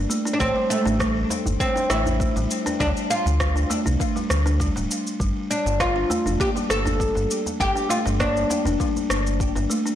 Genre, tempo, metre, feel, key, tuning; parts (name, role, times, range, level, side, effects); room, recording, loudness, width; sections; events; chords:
organic downtempo; 100 BPM; 4/4; straight; G dorian; A4 = 440 Hz
oud; melody; 0.0-9.7 s; A3 to A4; -24 LUFS; equal; ping-pong delay
buzzing kalimba; arpeggios; 0.0-10.0 s; G3 to D4; -27 LUFS; equal; digital delay
round analog bass; bass; 0.0-9.7 s; D1 to D2; -24 LUFS; equal; sidechain pumping
electronic cabasa and rim click; drums; 0.1-10.0 s; -29 LUFS; equal; overdrive
electronic kick drum; drums; 0.4-9.5 s; -28 LUFS; equal; overdrive
djembe; percussion; 0.9-9.7 s; -33 LUFS; right 2 dB
light reverb, studio ambience; blown-out, overdriven recording, overdrive; -20 LUFS; side -11 dB against mid
0.0-10.0 A section
0.4 A5; 2.8 Dm; 5.2 G5